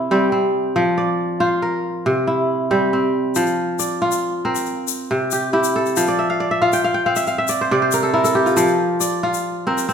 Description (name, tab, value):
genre	west african traditional, West African string and xylophone music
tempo	92 BPM (dotted quarters)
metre	12/8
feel	straight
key	F major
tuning	A4 = 440 Hz
part	kora	arpeggios	0.0-9.9 s	C3 to G5	-17 LUFS	equal	none
part	tube shaker	percussion	3.4-9.9 s	none	-26 LUFS	left 10 dB	none
room	wet recital hall reverb, RT60 1.3 s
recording	minimal, uncompressed stereo recording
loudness	-16 LUFS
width	side -7 dB against mid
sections	0.0-3.4 A section; 3.4-9.9 B section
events	kora fill 6.1-8.6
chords	0.0 C; 0.8 F5; 2.1 C; 3.4 F5; 4.7 C; 6.0 F; 7.3 C; 8.6 F5